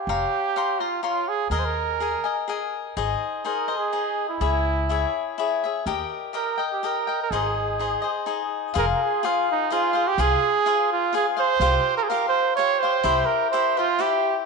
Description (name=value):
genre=mexican folk, mariachi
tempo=125 BPM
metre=3/4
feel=straight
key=Ab major, F minor from 8.8 s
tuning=A4 = 440 Hz
part: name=clear trumpet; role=melody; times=0.0-14.4 s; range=Eb4 to Db5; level=-23 LUFS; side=right 8 dB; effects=none
part: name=cavaquinho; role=accompaniment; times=0.0-14.5 s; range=Eb4 to C6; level=-25 LUFS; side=left 9 dB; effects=none
part: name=upright bass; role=bass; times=0.1-13.2 s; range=F1 to Eb2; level=-27 LUFS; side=equal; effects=none
room=wet echo chamber reverb, RT60 1.5 s, studio reverb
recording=1960s-style stereo with parts hard left and right, nothing above 10.3 kHz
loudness=-21 LUFS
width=side -4 dB against mid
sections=0.0-8.8 A section; 8.8-14.5 B section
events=break 8.3-8.8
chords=0.1 Bbmadd9/F; 1.5 Ebsus4; 3.0 Ab; 4.4 Dbm; 5.9 Eb; 7.3 Ab; 8.8 Fm; 11.6 Csus4; 13.1 C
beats=| 0.08 0.56 1.04 | 1.52 2.00 2.49 | 2.98 3.46 3.94 | 4.42 4.90 5.38 | 5.86 6.34 6.82 | 7.30 7.79 8.27 | 8.76 9.24 9.72 | 10.20 10.67 11.15 | 11.62 12.10 12.57 | 13.05 13.53 14.01